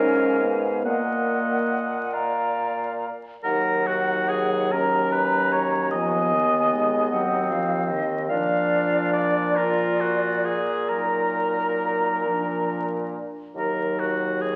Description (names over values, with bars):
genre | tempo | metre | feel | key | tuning
classical, slow romantic movement for wind quintet | 44-51 BPM (dotted quarters) | 6/8 | rubato | Eb minor | A4 = 441 Hz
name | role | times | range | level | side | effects
hollow concert flute | melody | 0.0-12.9 s | D5 to Bb5 | -30 LUFS | equal | none
warm oboe | second line | 0.0-14.6 s | Gb4 to Gb5 | -28 LUFS | equal | none
clear clarinet | accompaniment | 0.0-14.6 s | Cb4 to Eb5 | -32 LUFS | equal | none
mellow French horn | accompaniment | 0.0-14.6 s | Eb3 to Db4 | -33 LUFS | equal | none
warm bassoon | bass | 0.0-14.6 s | Eb2 to Bb2 | -30 LUFS | equal | none
room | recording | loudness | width
wet recital hall reverb, RT60 1.4 s | very old 78 rpm record, vinyl crackle | -23 LUFS | mono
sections
0.0-3.4 A section; 3.4-14.6 B section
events
none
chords
0.0 Abm69; 0.8 Ebm/Bb; 2.1 Bb; 3.4 Ebm; 4.7 Ebm7; 5.9 Fm7b5/Eb; 7.1 Ebm69; 8.3 Bb; 10.9 Ebm/Bb; 12.2 Bb; 13.6 Ebm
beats
| 0.85 2.13 | 3.43 4.71 | 5.92 7.12 | 8.30 9.58 | 10.89 12.24 | 13.55